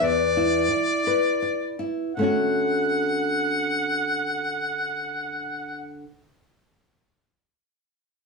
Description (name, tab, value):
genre	acoustic folk duo or small band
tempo	79-88 BPM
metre	3/4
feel	straight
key	D major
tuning	A4 = 439 Hz
part	warm harmonica	melody	0.0-6.0 s	D5 to F#5	-25 LUFS	equal	none
part	nylon-string guitar	accompaniment	0.0-6.1 s	E2 to B4	-24 LUFS	left 2 dB	none
room	moderate studio ambience, RT60 0.5 s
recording	small room reverb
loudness	-22 LUFS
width	side -3 dB against mid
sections	0.0-2.2 A section; 2.2-6.7 B section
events	slowing down 0.0-2.2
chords	0.0 E5; 2.2 Dmaj7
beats	| 0.01 0.70 1.42 | 2.16 2.92 3.68 | 4.45 5.21 5.97